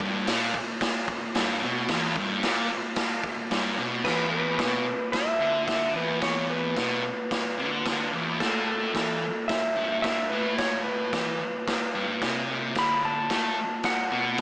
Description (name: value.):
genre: garage rock duo or trio.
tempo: 110 BPM.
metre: 4/4.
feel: straight.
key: unclear.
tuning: A4 = 440 Hz.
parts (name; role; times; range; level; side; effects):
thick fuzz guitar; riff; 0.0-14.4 s; E2 to A3; -29 LUFS; equal; distortion.
raw garage drum kit; drums; 0.0-14.4 s; crash cymbal, hi-hat, kick drum, snare drum; -27 LUFS; equal; none.
clean lap steel guitar; melody; 4.0-14.4 s; A4 to B5; -28 LUFS; equal; none.
room: wet spring reverb, RT60 1.6 s.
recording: small speaker sound.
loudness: -24 LUFS.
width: side -23 dB against mid.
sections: 0.0-4.0 A section; 4.0-14.4 B section.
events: none.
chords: 0.0 N.C.; 4.0 E5; 8.4 A5; 12.8 D5.